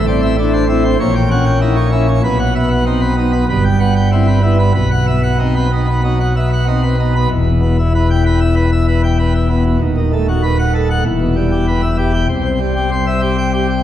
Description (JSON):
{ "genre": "classical, organ toccata", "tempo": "96 BPM", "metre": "4/4", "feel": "straight", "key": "E minor", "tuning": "A4 = 439 Hz", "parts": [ { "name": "pipe organ, plenum", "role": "solo", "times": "0.0-13.8 s", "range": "D#1 to G5", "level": "-12 LUFS", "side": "equal", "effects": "none" } ], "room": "wet concert hall reverb, RT60 1.9 s", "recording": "dark, warm production", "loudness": "-12 LUFS", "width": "side -11 dB against mid", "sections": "0.0-7.3 A section; 7.3-13.8 B section", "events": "none", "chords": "0.0 Am; 1.0 A#dim7; 2.2 B; 3.5 Em/G; 4.8 B; 7.3 Em; 9.8 B7/D#; 11.1 Em; 12.3 C" }